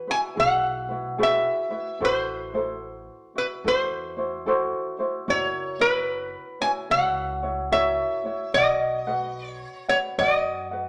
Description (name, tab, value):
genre	Hawaiian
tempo	73 BPM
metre	4/4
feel	swing 64% on 8ths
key	E major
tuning	A4 = 442 Hz
part	lap resonator guitar	melody	0.0-10.9 s	B4 to G#5	-26 LUFS	equal	none
part	ukulele	accompaniment	0.0-10.9 s	E4 to F#5	-31 LUFS	equal	none
part	upright bass	bass	0.4-10.9 s	F#1 to F#2	-41 LUFS	equal	none
room	wet large studio reverb, RT60 1.1 s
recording	none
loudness	-25 LUFS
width	mono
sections	0.0-10.9 A section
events	none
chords	0.0 Eadd9; 2.0 Am6; 5.3 F#7; 8.6 B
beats	0.37 1.19 | 2.01 2.83 3.64 4.46 | 5.28 6.10 6.92 7.73 | 8.55 9.37 10.19